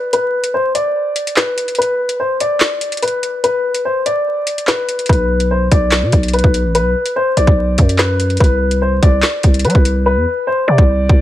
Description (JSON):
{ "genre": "hip hop, drill", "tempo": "145 BPM", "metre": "4/4", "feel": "half-time", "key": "B phrygian", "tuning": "A4 = 439 Hz", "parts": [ { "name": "bright upright piano", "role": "melody", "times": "0.0-11.2 s", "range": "B4 to D5", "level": "-16 LUFS", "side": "left 2 dB", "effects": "low-pass filter" }, { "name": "drill drum kit", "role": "drums", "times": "0.1-11.2 s", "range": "handclaps, hi-hat, kick drum, snare drum", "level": "-14 LUFS", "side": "equal", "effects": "vintage 12-bit sampler grit" }, { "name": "growling 808-style bass", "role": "bass", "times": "5.1-11.2 s", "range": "A1 to G3", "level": "-15 LUFS", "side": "equal", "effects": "none" } ], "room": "light reverb", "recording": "vinyl crackle", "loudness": "-12 LUFS", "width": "side -13 dB against mid", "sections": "0.0-11.2 A section", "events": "break 0.0-5.1; filter sweep on upright piano 0.0-11.2; hi-hats muted 10.1-11.2", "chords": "0.0 N.C.; 5.1 Bm; 8.4 Csus2" }